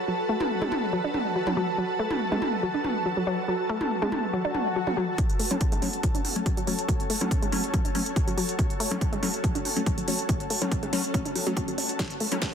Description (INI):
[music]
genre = driving peak-time techno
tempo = 141 BPM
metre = 4/4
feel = straight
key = F# minor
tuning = A4 = 440 Hz
[part]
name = overtone-sweeping drone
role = drone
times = 0.0-5.2 s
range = F#3 to F#4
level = -39 LUFS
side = right 3 dB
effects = none
[part]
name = ethereal airy pad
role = texture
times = 0.0-12.5 s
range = F#4 to A5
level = -31 LUFS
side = equal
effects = ensemble chorus, built-in reverb, sidechain pumping
[part]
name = analog pluck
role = riff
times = 0.1-12.3 s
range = F#3 to F#4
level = -31 LUFS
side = equal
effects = chorus, tube saturation, sidechain pumping, tape echo
[part]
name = techno drum kit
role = drums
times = 0.4-12.5 s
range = hi-hat, snare drum, toms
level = -30 LUFS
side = right 1 dB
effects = sidechain pumping on toms, high-pass filter on toms, sidechain pumping on hats, high-pass filter on hats, high-pass filter on snare, high-pass filter on room
[part]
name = swell and riser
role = sound effects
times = 4.4-5.2, 12.0-12.5 s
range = none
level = -33 LUFS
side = left 4 dB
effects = none
[part]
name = electronic kick drum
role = drums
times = 5.2-12.5 s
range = none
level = -27 LUFS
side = equal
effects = none
[part]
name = wavetable chord stab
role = stabs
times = 5.5-12.4 s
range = F#3 to C#4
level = -31 LUFS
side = left 2 dB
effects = vintage 12-bit sampler grit, sidechain pumping, dub echo
[sound]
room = moderate lush hall reverb, RT60 2.5 s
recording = dense, heavily limited modern master, high-pass filter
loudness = -24 LUFS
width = side -7 dB against mid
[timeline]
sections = 0.0-5.2 A section; 5.2-12.5 B section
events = swell 4.4-5.2; build-up 5.2-12.5; filter sweep on synth arpeggio sound 5.2-12.5; filter sweep on synth stab 5.2-12.5; filter sweep 5.2-12.5; drum fill 12.0-12.5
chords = 0.0 F#m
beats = | 0.08 0.50 0.93 1.35 | 1.78 2.21 2.63 3.06 | 3.48 3.91 4.33 4.76 | 5.18 5.61 6.04 6.46 | 6.89 7.31 7.74 8.16 | 8.59 9.01 9.44 9.87 | 10.29 10.72 11.14 11.57 | 11.99 12.42